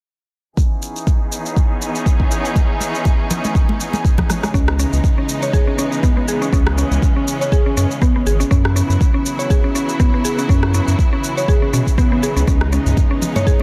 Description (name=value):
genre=afro house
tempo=121 BPM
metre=4/4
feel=swing 55% on 16ths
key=C# minor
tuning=A4 = 440 Hz
part: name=clear studio string section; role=sustained chords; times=0.6-13.6 s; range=C#3 to G#4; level=-26 LUFS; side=equal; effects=sidechain pumping, low-pass filter
part: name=afro-pop drum kit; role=drums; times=0.6-13.6 s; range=rim click, shaker, toms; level=-28 LUFS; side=equal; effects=small room ambience
part: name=electronic kick drum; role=drums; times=0.6-13.6 s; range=none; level=-18 LUFS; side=equal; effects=small room ambience
part: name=congas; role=percussion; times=2.6-4.5, 12.5-13.6 s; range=none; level=-25 LUFS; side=equal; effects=none
part: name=mallet-like synth pluck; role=arpeggios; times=4.5-13.6 s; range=B3 to C#5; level=-23 LUFS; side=equal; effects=chorus, sidechain pumping, tape echo
part: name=round analog bass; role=bass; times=4.5-12.9 s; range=G#1 to B2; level=-19 LUFS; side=equal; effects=tube saturation, sidechain pumping
room=little or no reverb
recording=none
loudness=-17 LUFS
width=mono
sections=0.6-4.5 A section; 4.5-13.6 B section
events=filter sweep on string section 0.6-4.5; drum fill 4.2-4.5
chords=0.6 C#m9; 8.5 F#7sus4; 12.5 C#m9